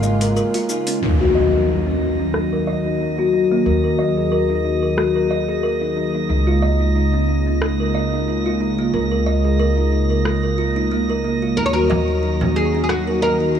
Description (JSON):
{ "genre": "organic downtempo", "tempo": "91 BPM", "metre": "4/4", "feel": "swing 55% on 16ths", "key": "Eb minor", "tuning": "A4 = 440 Hz", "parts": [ { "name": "oud", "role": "melody", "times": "0.0-0.7, 11.6-13.6 s", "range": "F4 to Db5", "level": "-23 LUFS", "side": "equal", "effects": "digital delay" }, { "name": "warm analog pad", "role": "sustained chords", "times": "0.0-13.6 s", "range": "Db3 to Gb4", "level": "-22 LUFS", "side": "left 1 dB", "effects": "chorus, vintage 12-bit sampler grit" }, { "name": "kalimba", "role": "arpeggios", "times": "0.0-13.6 s", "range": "Bb3 to Eb5", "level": "-20 LUFS", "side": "left 1 dB", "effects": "low-pass filter, digital delay" }, { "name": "upright bass", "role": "bass", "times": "0.0-13.6 s", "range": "Ab1 to Eb2", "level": "-22 LUFS", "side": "equal", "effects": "none" }, { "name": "deep house drum kit", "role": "drums", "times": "0.0-13.0 s", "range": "hi-hat, rim click, shaker", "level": "-28 LUFS", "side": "equal", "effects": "overdrive, low-pass filter on perc, low-pass filter on hats, low-pass filter on snare" }, { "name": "impact", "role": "sound effects", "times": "1.0-3.7 s", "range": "none", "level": "-23 LUFS", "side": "equal", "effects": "none" }, { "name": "drifting glass-harmonics texture", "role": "texture", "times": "1.4-13.6 s", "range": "Eb5", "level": "-30 LUFS", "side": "right 3 dB", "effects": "chorus, built-in reverb" }, { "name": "frame drum", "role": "percussion", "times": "11.9-12.5 s", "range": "none", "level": "-24 LUFS", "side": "right 1 dB", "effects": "none" } ], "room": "light reverb, small room ambience", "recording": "none", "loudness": "-16 LUFS", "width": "side -8 dB against mid", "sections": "0.0-1.0 A section; 1.0-13.6 B section", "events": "break 0.4-1.0; impact 1.0-3.7; filter sweep on drum 1.0-13.6; filter sweep on kalimba 1.0-13.6", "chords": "0.0 Db6; 1.0 Ebm; 6.3 Db6; 11.6 Ebm" }